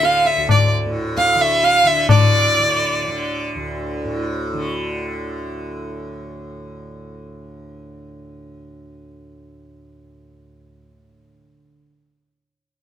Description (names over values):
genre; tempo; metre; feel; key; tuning
indian classical, Hindustani; 131 BPM; 3/4; straight; unclear; A4 = 440 Hz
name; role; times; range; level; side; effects
clear violin; melody; 0.0-3.4 s; D5 to F5; -15 LUFS; right 1 dB; none
tanpura; drone; 0.0-11.7 s; D2 to D3; -27 LUFS; right 1 dB; none
tabla; percussion; 0.0-2.3 s; none; -16 LUFS; left 3 dB; none
room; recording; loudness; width
moderate small room reverb, RT60 0.5 s; band playing live in one room; -16 LUFS; side -10 dB against mid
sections
0.0-2.1 A section; 2.1-4.8 B section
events
none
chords
none